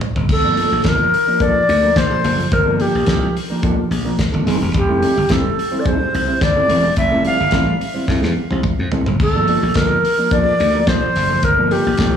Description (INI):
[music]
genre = disco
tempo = 108 BPM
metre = 4/4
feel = straight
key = G dorian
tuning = A4 = 444 Hz
[part]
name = damped 70s drum kit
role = drums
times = 0.0-12.1 s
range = crash cymbal, hi-hat, kick drum, snare drum, splash cymbal, toms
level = -22 LUFS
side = left 1 dB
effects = none
[part]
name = mellow electric guitar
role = accompaniment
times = 0.2-12.2 s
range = F3 to C5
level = -21 LUFS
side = right 2 dB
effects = slapback echo
[part]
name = glassy slap bass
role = bass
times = 0.2-12.2 s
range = E1 to F2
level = -19 LUFS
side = left 2 dB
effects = none
[part]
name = bright reedy alto flute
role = melody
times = 0.3-12.2 s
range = G4 to F5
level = -17 LUFS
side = left 1 dB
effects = slapback echo, tape echo
[sound]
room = light reverb, small room ambience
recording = live gig heard through the venue's PA, club reverb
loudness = -14 LUFS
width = side -8 dB against mid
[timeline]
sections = 0.3-12.2 A section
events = drum fill 0.0, 8.1-9.2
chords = 0.3 Gm9; 4.5 Fmaj9; 9.2 Gm9